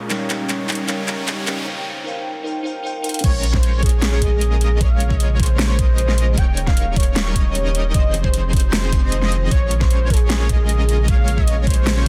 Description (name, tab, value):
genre	future bass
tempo	153 BPM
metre	4/4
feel	half-time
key	Bb dorian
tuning	A4 = 440 Hz
part	glassy digital keys	accompaniment	0.0-3.3 s	Bb3 to C6	-30 LUFS	equal	chorus, sidechain pumping, digital delay
part	ethereal airy pad	sustained chords	0.0-12.1 s	Db3 to Ab4	-36 LUFS	equal	ensemble chorus, built-in reverb, sidechain pumping
part	big bright polysynth	riff	0.0-12.0 s	F3 to Eb5	-30 LUFS	equal	chorus, sidechain pumping, digital delay
part	saturated sub bass	bass	0.0-12.1 s	Eb1 to Bb1	-21 LUFS	equal	sidechain pumping, high-pass filter
part	riser	sound effects	0.0-1.7 s	none	-34 LUFS	equal	none
part	dubstep drum kit	drums	0.1-11.9 s	crash cymbal, handclaps, hi-hat, snare drum	-27 LUFS	equal	none
part	warm velvety synth lead	melody	3.2-12.1 s	Ab4 to G5	-29 LUFS	equal	chorus, sidechain pumping, delay
part	airy dreamy lead	arpeggios	3.2-12.0 s	C5 to Eb5	-35 LUFS	equal	chorus, sidechain pumping
part	electronic kick drum	drums	3.2-11.8 s	none	-19 LUFS	equal	none
room	light reverb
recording	dense, heavily limited modern master, high-pass filter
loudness	-18 LUFS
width	mono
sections	0.0-3.2 A section; 3.2-12.1 B section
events	build-up 0.0-3.2; drum fill 0.0-1.7, 3.0; riser 0.0-1.7; filter sweep on analog polysynth 0.0-3.2; break 1.7-3.2; drop 3.2-12.1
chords	0.1 Eb7; 1.7 F5; 3.2 Bbm7; 6.4 Eb7; 7.9 Fm7; 9.5 Bbm7